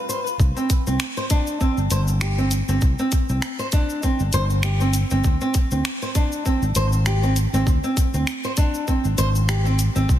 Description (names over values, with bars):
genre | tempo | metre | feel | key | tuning
organic downtempo | 99 BPM | 4/4 | swing 56% on 16ths | unclear | A4 = 442 Hz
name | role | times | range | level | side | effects
flamenco guitar | arpeggios | 0.1-10.1 s | C4 to C5 | -24 LUFS | right 1 dB | ping-pong delay
deep house drum kit | drums | 0.1-10.2 s | finger snaps, hi-hat, shaker | -29 LUFS | left 1 dB | small room ambience, soft clipping on snare
sustaining fretless electric bass | bass | 0.4-10.2 s | G1 to D2 | -20 LUFS | equal | none
electronic kick drum | drums | 0.4-10.2 s | none | -19 LUFS | equal | small room ambience
room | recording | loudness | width
light reverb | dense, heavily limited modern master | -18 LUFS | side -12 dB against mid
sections
0.4-10.2 A section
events
none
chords
0.4 C5; 5.2 Ab(#11)